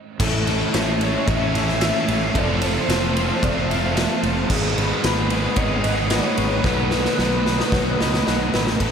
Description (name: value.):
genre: rock, shoegaze and dream pop.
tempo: 112 BPM.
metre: 4/4.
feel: straight.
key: A lydian.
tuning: A4 = 440 Hz.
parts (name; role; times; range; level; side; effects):
soft string machine; sustained chords; 1.0-8.9 s; B4 to E6; -30 LUFS; equal; phaser, ensemble chorus.
electric guitar through a small old amp; arpeggios; 0.2-8.9 s; G#4 to E5; -31 LUFS; right 1 dB; analog chorus, analog delay.
crunchy overdriven guitar; riff; 0.2-8.8 s; G#2 to F4; -28 LUFS; left 1 dB; none.
overdriven electric guitar; riff; 0.2-8.9 s; G#2 to B4; -28 LUFS; left 9 dB; analog chorus.
overdriven electric guitar; riff; 0.2-8.9 s; G#2 to F4; -27 LUFS; right 8 dB; reverse reverb.
fuzz fingered electric bass; bass; 0.2-8.9 s; F1 to C#2; -25 LUFS; equal; overdrive.
raw garage drum kit; drums; 0.2-8.9 s; crash cymbal, kick drum, ride cymbal, snare drum; -22 LUFS; equal; none.
warm velvety synth lead; melody; 1.0-8.5 s; B4 to E5; -29 LUFS; left 1 dB; chorus, analog delay.
room: moderate plate reverb, RT60 2.2 s.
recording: dreamy mix soaked in reverb.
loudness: -18 LUFS.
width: side -7 dB against mid.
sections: 0.2-8.8 A section.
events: stop 0.0; drum fill 6.7-8.8.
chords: 0.2 Amaj7; 2.4 Fmaj7; 4.5 G#m7; 6.7 B.